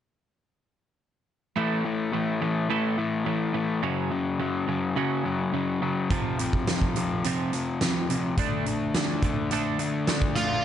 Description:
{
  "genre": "quiet-loud alternative rock",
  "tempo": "106 BPM",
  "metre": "4/4",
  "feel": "straight",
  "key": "A major",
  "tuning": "A4 = 440 Hz",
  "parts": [
    { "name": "twelve-string electric guitar", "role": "arpeggios", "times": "1.6-10.6 s", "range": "F2 to D4", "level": "-32 LUFS", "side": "right 9 dB", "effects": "digital delay" },
    { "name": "crunchy overdriven guitar", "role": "riff", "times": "1.6-10.6 s", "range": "F2 to D4", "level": "-26 LUFS", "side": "left 4 dB", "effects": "none" },
    { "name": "huge arena drum kit", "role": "drums", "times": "6.1-10.5 s", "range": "hi-hat, kick drum, snare drum", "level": "-28 LUFS", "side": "right 1 dB", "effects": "none" },
    { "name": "octave-fuzz lead guitar", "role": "melody", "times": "10.4-10.6 s", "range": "F4", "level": "-25 LUFS", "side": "right 2 dB", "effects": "distortion" }
  ],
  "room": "moderate studio reverb, RT60 0.8 s",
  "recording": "nothing above 10.4 kHz",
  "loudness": "-24 LUFS",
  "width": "side -10 dB against mid",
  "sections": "1.6-10.6 A section",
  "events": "none",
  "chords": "1.6 A5; 3.8 F#5; 6.1 F5; 8.4 D5"
}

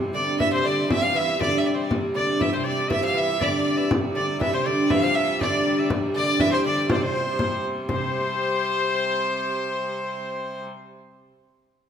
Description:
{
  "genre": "medieval dance",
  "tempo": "120 BPM",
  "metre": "2/4",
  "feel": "straight",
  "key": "C major",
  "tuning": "A4 = 440 Hz",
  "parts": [
    { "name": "clear hurdy-gurdy", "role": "drone", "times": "0.0-10.7 s", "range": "C3 to G3", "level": "-30 LUFS", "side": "right 1 dB", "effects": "none" },
    { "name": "rich fiddle", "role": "melody", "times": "0.1-10.6 s", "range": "C5 to F5", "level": "-25 LUFS", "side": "equal", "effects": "none" },
    { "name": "edgy shawm", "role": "second line", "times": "0.1-10.6 s", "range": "C5 to F5", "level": "-30 LUFS", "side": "left 4 dB", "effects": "none" },
    { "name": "lute", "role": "second line", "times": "0.1-11.3 s", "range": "C3 to F3", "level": "-27 LUFS", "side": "right 1 dB", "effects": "none" },
    { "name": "frame drum", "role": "percussion", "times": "0.4-8.1 s", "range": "none", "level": "-28 LUFS", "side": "left 2 dB", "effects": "none" }
  ],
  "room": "wet recital hall reverb, RT60 1.7 s",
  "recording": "none",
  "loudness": "-21 LUFS",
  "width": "side -8 dB against mid",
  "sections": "0.0-7.9 A section; 7.9-9.9 B section",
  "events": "none",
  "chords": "none"
}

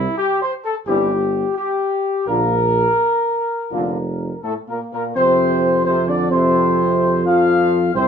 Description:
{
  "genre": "classical",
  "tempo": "85 BPM",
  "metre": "4/4",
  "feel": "straight",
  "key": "F major",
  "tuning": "A4 = 440 Hz",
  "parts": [
    { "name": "dark trumpet section", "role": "melody", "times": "0.0-8.1 s", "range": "E4 to F5", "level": "-19 LUFS", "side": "left 1 dB", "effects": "none" },
    { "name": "warm tuba", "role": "bass", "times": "0.0-8.1 s", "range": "F1 to F2", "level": "-20 LUFS", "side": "right 2 dB", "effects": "none" },
    { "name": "clear trombone section", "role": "sustained chords", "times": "0.9-8.1 s", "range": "A2 to Bb3", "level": "-24 LUFS", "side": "right 2 dB", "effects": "none" },
    { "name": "warm French horn section", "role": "sustained chords", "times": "0.9-8.1 s", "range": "A3 to F4", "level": "-20 LUFS", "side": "left 3 dB", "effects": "none" }
  ],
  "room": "moderate studio reverb, RT60 0.8 s",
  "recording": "minimal, uncompressed stereo recording",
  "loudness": "-16 LUFS",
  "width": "side -7 dB against mid",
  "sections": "0.0-5.2 A section; 5.2-8.1 B section",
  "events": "none",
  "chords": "0.0 C (rootless); 2.3 Bb; 5.2 F5"
}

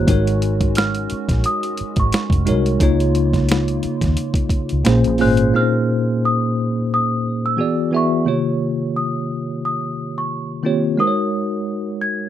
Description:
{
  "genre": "R&B, neo-soul",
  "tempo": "88 BPM",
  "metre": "4/4",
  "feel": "swing 56% on 16ths",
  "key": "Bb minor",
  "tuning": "A4 = 438 Hz",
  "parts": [
    { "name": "small celesta", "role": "melody", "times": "0.0-12.3 s", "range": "Db6 to Ab6", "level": "-24 LUFS", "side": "equal", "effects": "none" },
    { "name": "bell-like tine electric piano", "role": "accompaniment", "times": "0.0-12.3 s", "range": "Bb2 to E5", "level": "-19 LUFS", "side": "equal", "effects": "medium stereo tremolo" },
    { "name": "hollow soft pad", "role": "sustained chords", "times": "0.0-5.5 s", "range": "Db3 to Gb4", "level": "-31 LUFS", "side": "right 2 dB", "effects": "ensemble chorus" },
    { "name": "vintage muted fingered electric bass", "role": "bass", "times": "0.0-5.5 s", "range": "F1 to Eb2", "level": "-20 LUFS", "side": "equal", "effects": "none" },
    { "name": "boom bap sampler-style drum kit", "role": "drums", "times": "0.1-5.5 s", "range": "hi-hat, kick drum, snare drum", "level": "-20 LUFS", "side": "equal", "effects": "none" }
  ],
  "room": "light reverb",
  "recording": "rough home demo mix",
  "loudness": "-16 LUFS",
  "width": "side -11 dB against mid",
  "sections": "0.0-5.5 A section; 5.5-12.3 A section",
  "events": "none",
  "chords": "0.1 Ab7sus4; 2.8 Db6; 4.8 Bbm7; 5.5 Bbm11; 7.6 E9; 8.3 Eb13; 11.0 Ab7sus4"
}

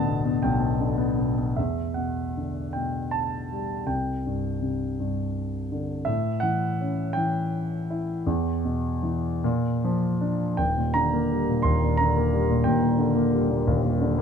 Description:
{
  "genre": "classical, lyrical solo piano",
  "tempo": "50-59 BPM (dotted quarters)",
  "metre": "6/8",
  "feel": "rubato",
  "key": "E minor",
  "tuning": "A4 = 442 Hz",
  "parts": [
    { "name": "warm concert grand piano", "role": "solo", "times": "0.0-14.2 s", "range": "D1 to C6", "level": "-23 LUFS", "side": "equal", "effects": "none" }
  ],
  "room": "little or no reverb",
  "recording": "close, detailed microphones",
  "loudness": "-23 LUFS",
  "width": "side -7 dB against mid",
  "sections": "0.0-1.6 A section; 1.6-10.6 B section; 10.6-14.2 C section",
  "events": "none",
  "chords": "0.0 G/D; 1.6 Em7; 3.9 Csus2; 6.1 A7; 8.3 Em; 9.4 A#; 10.6 Ebmaj7"
}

